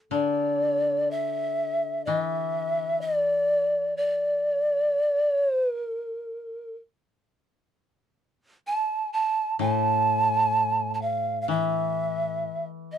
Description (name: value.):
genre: japanese traditional, Japanese chamber music.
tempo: 63 BPM.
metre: 4/4.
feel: rubato.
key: D hirajoshi.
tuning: A4 = 436 Hz.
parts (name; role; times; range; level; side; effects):
koto; accompaniment; 0.0-13.0 s; A2 to A4; -30 LUFS; left 5 dB; none.
mellow hollow polished pan flute; melody; 0.1-13.0 s; D5 to A5; -24 LUFS; right 1 dB; none.
room: moderate booth ambience, RT60 0.2 s.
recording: dark, warm production.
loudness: -23 LUFS.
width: side -9 dB against mid.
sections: 0.1-13.0 A section.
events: none.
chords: none.